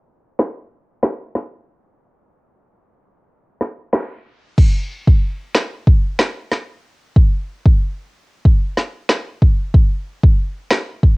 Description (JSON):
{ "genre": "dancehall", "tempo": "93 BPM", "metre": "4/4", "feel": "straight", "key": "none", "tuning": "none", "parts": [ { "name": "afro-pop drum kit", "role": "drums", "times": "0.4-11.2 s", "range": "crash cymbal, finger snaps, kick drum, snare drum", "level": "-13 LUFS", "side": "equal", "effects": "cassette tape" } ], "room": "little or no reverb", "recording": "home recording on cassette, low-pass filter", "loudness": "-15 LUFS", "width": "side -30 dB against mid", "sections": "0.0-4.6 A section; 4.6-11.2 B section", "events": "filter sweep 0.0-4.6; kick muted 3.3-4.6", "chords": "none" }